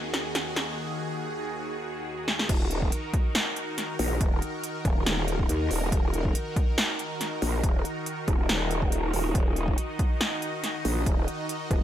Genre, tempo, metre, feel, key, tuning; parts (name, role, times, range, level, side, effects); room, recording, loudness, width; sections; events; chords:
heavy wobble dubstep; 140 BPM; 4/4; swing 54% on 16ths, half-time; Eb minor; A4 = 440 Hz
supersaw pad; sustained chords; 0.0-11.8 s; Eb2 to Eb5; -33 LUFS; equal; phaser, sidechain pumping
big-room dance drum kit; drums; 0.1-11.8 s; crash cymbal, hi-hat, snare drum; -30 LUFS; equal
growl bass; bass; 2.5-11.8 s; Eb1 to Eb2; -27 LUFS; equal; chorus, overdrive
electronic kick drum; drums; 2.5-11.8 s; -26 LUFS; equal
little or no reverb; -25 LUFS; side -11 dB against mid
0.0-2.5 A section; 2.5-11.8 B section
build-up 0.0-2.5; drum fill 0.0-0.8, 2.3; break 0.8-2.5; drop 2.5-11.8
0.0 Ebm